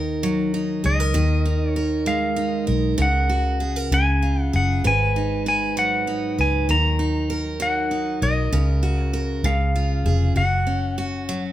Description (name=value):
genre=six-eight pop ballad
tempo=65 BPM (dotted quarters)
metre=6/8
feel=straight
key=F# major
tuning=A4 = 438 Hz
part: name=picked steel-string acoustic guitar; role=accompaniment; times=0.0-11.5 s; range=G#2 to B4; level=-24 LUFS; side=right 2 dB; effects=none
part: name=vintage muted fingered electric bass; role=bass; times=0.0-11.5 s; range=E#1 to D#2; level=-22 LUFS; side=equal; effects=none
part: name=clean lap steel guitar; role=melody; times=0.9-11.5 s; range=D#5 to A#5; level=-24 LUFS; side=left 1 dB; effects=none
room=light reverb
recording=band playing live in one room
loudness=-19 LUFS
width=side -13 dB against mid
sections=0.0-11.5 A section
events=none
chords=0.0 F#69; 1.1 G#madd9/D#; 3.0 F#/C#; 3.9 C#; 4.8 G#m7; 6.7 D#m; 8.5 F#/C#; 9.4 C#; 10.4 F#5